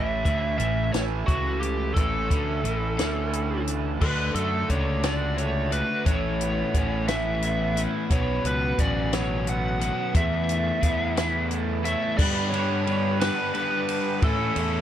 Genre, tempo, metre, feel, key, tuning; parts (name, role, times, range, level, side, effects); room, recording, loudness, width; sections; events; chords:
indie rock; 59 BPM (dotted quarters); 6/8; straight; A mixolydian; A4 = 440 Hz
biting lead guitar; melody; 0.0-14.8 s; F#4 to F#5; -29 LUFS; right 1 dB; overdrive, slapback echo
crunchy overdriven guitar; riff; 0.0-14.8 s; G2 to F#4; -31 LUFS; left 7 dB
raw garage guitar; riff; 0.0-14.8 s; E2 to B4; -31 LUFS; right 6 dB; overdrive, lush chorus, slapback echo
fuzz fingered electric bass; bass; 0.0-14.8 s; A1 to A2; -28 LUFS; equal; overdrive
compact cocktail drum kit; drums; 0.3-14.7 s; crash cymbal, hi-hat, kick drum, ride cymbal, snare drum; -27 LUFS; equal
growling trumpet; second line; 11.8-14.8 s; E4 to C#5; -37 LUFS; left 9 dB
bright tonewheel organ; sustained chords; 12.2-14.8 s; D4 to C#6; -40 LUFS; equal
small room ambience; -22 LUFS; side -10 dB against mid
0.0-4.0 A section; 4.0-12.2 B section; 12.2-14.8 C section
0.0 A; 4.0 D; 6.1 Aadd9; 8.1 Bsus2; 10.1 Esus4; 12.2 G; 14.2 A